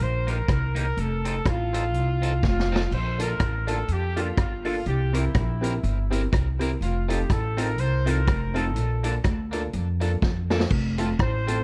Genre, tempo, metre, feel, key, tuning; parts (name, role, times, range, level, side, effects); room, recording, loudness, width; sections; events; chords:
ska; 123 BPM; 4/4; swing 57% on 8ths; Bb major; A4 = 440 Hz
clear horn section; melody; 0.0-11.6 s; E4 to C5; -33 LUFS; equal; tape echo
upright bass; bass; 0.0-11.6 s; F1 to F2; -28 LUFS; equal
electric guitar at the edge of break-up; accompaniment; 0.3-11.6 s; Bb3 to Bb4; -38 LUFS; equal; phaser, tape echo
vintage drum kit; drums; 0.3-11.6 s; crash cymbal, hi-hat, kick drum, rim click, snare drum; -29 LUFS; equal
warm upright piano; stabs; 3.2-11.6 s; A3 to Bb4; -33 LUFS; equal
little or no reverb; dark, warm production; -25 LUFS; mono
0.0-10.7 A section
drum fill 2.4-2.9, 10.2-10.7
0.0 Cm7; 1.0 F7; 2.9 Bbmaj7; 4.9 C7; 6.8 F7; 8.8 Bbmaj7; 10.7 F